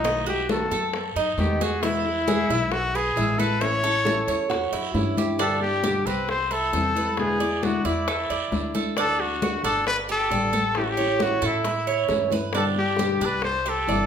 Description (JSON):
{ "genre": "latin, Cuban son and guajira", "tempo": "134 BPM", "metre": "4/4", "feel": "straight", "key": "unclear", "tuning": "A4 = 440 Hz", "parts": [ { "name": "clear trumpet", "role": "melody", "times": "0.0-14.1 s", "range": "Eb4 to C#5", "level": "-25 LUFS", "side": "left 2 dB", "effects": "none" }, { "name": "nylon-string guitar", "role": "accompaniment", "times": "0.0-14.1 s", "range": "B2 to G4", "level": "-28 LUFS", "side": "left 3 dB", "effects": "none" }, { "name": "Cuban tres", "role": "arpeggios", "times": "0.0-14.1 s", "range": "C4 to E5", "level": "-27 LUFS", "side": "right 6 dB", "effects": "none" }, { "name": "upright bass", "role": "bass", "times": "0.0-14.1 s", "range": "G1 to A2", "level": "-32 LUFS", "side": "right 1 dB", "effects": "none" }, { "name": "bongos", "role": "percussion", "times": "0.0-14.1 s", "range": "none", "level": "-34 LUFS", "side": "left 3 dB", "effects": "none" }, { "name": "congas", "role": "percussion", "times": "0.0-14.1 s", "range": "none", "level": "-31 LUFS", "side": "left 2 dB", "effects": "none" }, { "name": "guiro", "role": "percussion", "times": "0.0-14.1 s", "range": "none", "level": "-38 LUFS", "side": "right 6 dB", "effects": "none" }, { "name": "nylon-string guitar", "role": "second line", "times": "4.0-5.4 s", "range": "E4 to A4", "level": "-29 LUFS", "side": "right 2 dB", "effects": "none" } ], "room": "wet large studio reverb, RT60 0.8 s", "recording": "band playing live in one room", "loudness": "-21 LUFS", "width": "side -8 dB against mid", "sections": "0.0-5.4 A section; 5.4-14.1 B section", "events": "drum fill 4.7-5.4, 12.1-12.5", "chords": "0.0 B7; 1.8 E; 3.6 A; 5.4 G; 6.3 C; 7.2 E7; 8.1 Asus4/E; 9.0 D; 9.9 Gadd9; 10.8 A; 12.5 G; 13.4 Cadd9", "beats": "| 0.04 0.49 0.94 1.38 | 1.83 2.27 2.72 3.17 | 3.61 4.06 4.50 4.95 | 5.40 5.84 6.29 6.74 | 7.18 7.63 8.08 8.52 | 8.97 9.42 9.86 10.31 | 10.76 11.20 11.65 12.10 | 12.54 12.99 13.44 13.88" }